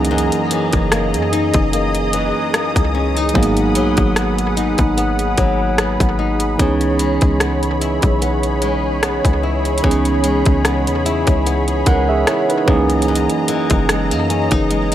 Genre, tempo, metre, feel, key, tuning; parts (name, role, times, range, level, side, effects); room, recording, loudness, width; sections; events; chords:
contemporary R&B; 74 BPM; 4/4; swing 54% on 16ths; C# dorian; A4 = 436 Hz
bright tine electric piano; accompaniment; 0.0-14.9 s; E3 to F#5; -19 LUFS; right 4 dB
lush unison pad; sustained chords; 0.0-14.9 s; G#4 to D#6; -22 LUFS; equal; chorus
flamenco guitar; arpeggios; 0.0-14.9 s; F#2 to G#4; -22 LUFS; left 6 dB; tape echo
warm 808-style bass; bass; 0.0-14.9 s; F#1 to F#2; -20 LUFS; equal
trap drum kit; drums; 0.0-14.9 s; hi-hat, kick drum, rim click; -19 LUFS; equal
light reverb; echo-heavy mix; -14 LUFS; side -12 dB against mid
0.0-14.9 A section
0.0 F#13; 3.4 G#m7; 6.6 C#m7; 12.7 F#13